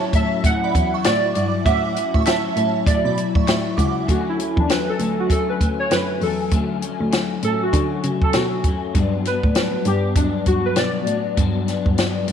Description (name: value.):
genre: indie pop, bedroom pop.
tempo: 99 BPM.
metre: 4/4.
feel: swing 60% on 16ths.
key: D major.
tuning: A4 = 440 Hz.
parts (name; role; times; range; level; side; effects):
warbly lo-fi synth keys; melody; 0.0-11.3 s; D4 to F#5; -23 LUFS; right 3 dB; wide subtle chorus, slapback echo.
shimmering bell with halo; second line; 0.0-4.0 s; C#5 to D6; -28 LUFS; right 9 dB; ensemble chorus, slapback echo.
electric guitar through a small old amp; accompaniment; 0.0-12.3 s; G2 to E4; -24 LUFS; left 8 dB; ensemble chorus, warbly pitch drift.
dark cello; bass; 0.1-12.3 s; C#2 to D3; -24 LUFS; right 1 dB; none.
compact cocktail drum kit; drums; 0.1-12.3 s; hi-hat, kick drum, snare drum; -21 LUFS; equal; none.
group handclap; percussion; 1.1-3.6 s; none; -35 LUFS; left 10 dB; none.
room: moderate echo chamber reverb, RT60 1.6 s, small room reverb.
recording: 1960s-style stereo with parts hard left and right.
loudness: -17 LUFS.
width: side -8 dB against mid.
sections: 0.0-4.1 A section; 4.1-12.3 B section.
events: synth keys solo 4.1-12.3.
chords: 0.0 Dmaj9; 4.1 Dmaj7; 8.9 Gmaj7.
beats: 0.44 1.05 | 1.66 2.26 2.87 3.48 | 4.08 4.69 5.30 5.91 | 6.52 7.12 7.73 8.34 | 8.95 9.56 10.16 10.77 | 11.38 11.98.